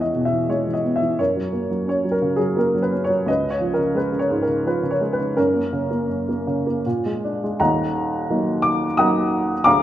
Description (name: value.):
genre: classical, lyrical solo piano.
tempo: 77-91 BPM.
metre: 3/4.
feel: rubato.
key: F# major.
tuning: A4 = 445 Hz.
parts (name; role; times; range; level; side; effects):
dark upright piano; solo; 0.0-9.8 s; D1 to Eb6; -18 LUFS; equal; none.
room: moderate recital hall reverb, RT60 1.4 s.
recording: minimal, uncompressed stereo recording.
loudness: -19 LUFS.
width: side -12 dB against mid.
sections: 0.0-7.6 A section; 7.6-9.8 B section.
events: none.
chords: 0.0 E; 1.2 F#; 3.3 C#7; 5.4 F#; 6.9 A#7; 7.6 Ebm.